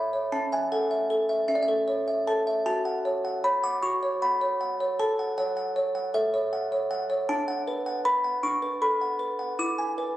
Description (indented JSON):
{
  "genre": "classical, lullaby for music box",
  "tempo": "52 BPM (dotted quarters)",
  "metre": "6/8",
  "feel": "rubato",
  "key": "unclear",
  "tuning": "A4 = 440 Hz",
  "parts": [
    { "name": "music box", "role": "solo", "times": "0.0-10.2 s", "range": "C#4 to D6", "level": "-24 LUFS", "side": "equal", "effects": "none" }
  ],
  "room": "moderate recital hall reverb, RT60 1.6 s",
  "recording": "recorded on a phone in the room, club reverb, compression",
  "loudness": "-24 LUFS",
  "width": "side -14 dB against mid",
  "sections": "0.0-10.2 A section",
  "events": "none",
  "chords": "0.3 A/C#; 2.7 F#m; 5.0 F#m/A; 7.3 Bm7/D; 9.6 E",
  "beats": "| 0.32 1.49 | 2.66 3.83 | 4.99 6.14 | 7.29 8.44 | 9.59"
}